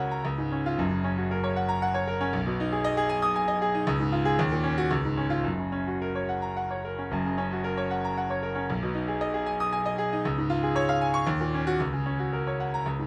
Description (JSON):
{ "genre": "classical, virtuoso piano study", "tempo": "106-120 BPM", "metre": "3/4", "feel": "rubato", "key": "F# major", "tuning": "A4 = 440 Hz", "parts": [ { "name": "clear concert grand piano", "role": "solo", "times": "0.0-13.1 s", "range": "F#1 to D#6", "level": "-28 LUFS", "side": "equal", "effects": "none" } ], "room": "moderate studio reverb, RT60 0.9 s", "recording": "none", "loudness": "-28 LUFS", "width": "mono", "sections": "0.0-7.1 A section; 7.1-13.1 A section", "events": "none", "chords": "0.2 C#; 0.8 F#; 2.3 G#m/B; 3.9 C#; 4.4 D#m7; 4.9 C#; 5.4 F#; 8.7 G#m/B; 10.2 C#; 11.2 D#m7; 11.8 F#/C#" }